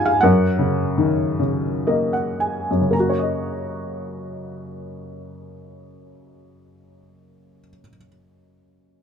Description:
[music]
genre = classical, lyrical solo piano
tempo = 52-86 BPM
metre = 3/4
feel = rubato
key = F# major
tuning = A4 = 440 Hz
[part]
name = felt-muted upright piano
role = solo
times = 0.0-9.0 s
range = C#2 to A#5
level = -19 LUFS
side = left 1 dB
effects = none
[sound]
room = moderate studio ambience, RT60 0.5 s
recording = minimal, uncompressed stereo recording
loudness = -18 LUFS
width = side -7 dB against mid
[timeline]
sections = 0.0-2.9 A section; 2.9-9.0 B section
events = slowing down 0.0-2.9; felt piano fill 1.4-2.9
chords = 0.2 F#6

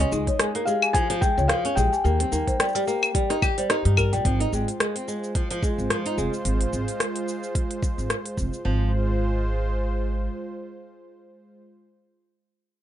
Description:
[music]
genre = folktronica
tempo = 109 BPM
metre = 4/4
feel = swing 56% on 16ths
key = Ab major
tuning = A4 = 440 Hz
[part]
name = felt-muted upright piano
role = melody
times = 0.0-3.9 s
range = Eb5 to Ab5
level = -27 LUFS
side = left 2 dB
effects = tape echo, plate reverb
[part]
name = folk marimba with medium mallets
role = second line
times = 0.0-4.2 s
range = G3 to Ab5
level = -29 LUFS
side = left 6 dB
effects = tape echo, plate reverb
[part]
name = flamenco guitar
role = arpeggios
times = 0.0-8.9 s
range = F3 to Bb4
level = -28 LUFS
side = right 1 dB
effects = tape echo, plate reverb
[part]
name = upright bass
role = bass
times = 0.0-10.3 s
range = F1 to G2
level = -24 LUFS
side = equal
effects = none
[part]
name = organic electronic drum kit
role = drums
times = 0.0-8.6 s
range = claves, hi-hat, rim click, shaker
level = -26 LUFS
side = left 1 dB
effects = none
[part]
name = electronic kick drum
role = drums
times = 0.3-8.5 s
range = none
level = -26 LUFS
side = equal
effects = none
[part]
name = warm analog pad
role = sustained chords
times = 4.5-11.6 s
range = Ab3 to C5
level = -31 LUFS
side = right 1 dB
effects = chorus, plate reverb
[sound]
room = moderate studio reverb, RT60 0.5 s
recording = nothing above 10.6 kHz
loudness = -22 LUFS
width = side -11 dB against mid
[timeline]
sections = 0.0-4.2 A section; 4.2-8.7 B section; 8.7-10.9 C section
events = none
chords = 0.0 Db; 2.0 Eb; 4.2 Ab6

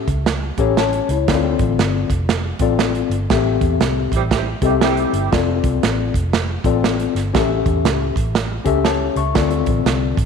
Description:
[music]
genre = uptempo 1960s-style soul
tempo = 119 BPM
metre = 4/4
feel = swing 62% on 8ths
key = unclear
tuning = A4 = 438 Hz
[part]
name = tine electric piano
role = accompaniment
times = 0.0-10.2 s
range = A2 to C#6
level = -20 LUFS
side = left 10 dB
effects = overdrive, fast stereo tremolo
[part]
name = vintage muted fingered electric bass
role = bass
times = 0.1-10.3 s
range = F1 to E2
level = -21 LUFS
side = equal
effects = none
[part]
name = natural country drum kit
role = drums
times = 0.1-10.3 s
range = hi-hat, kick drum, snare drum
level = -20 LUFS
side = right 5 dB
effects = none
[part]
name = dark horn section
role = second line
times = 4.1-5.3 s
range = G3 to G4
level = -23 LUFS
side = right 11 dB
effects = none
[sound]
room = moderate echo chamber reverb, RT60 2.0 s, small room ambience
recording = 1960s-style stereo with parts hard left and right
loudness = -16 LUFS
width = side -6 dB against mid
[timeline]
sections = 0.0-10.3 A section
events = band accent 3.3-5.3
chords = 0.0 A7; 1.3 Dm7; 3.3 Am7; 5.3 F6; 7.3 A7; 9.4 Dm7

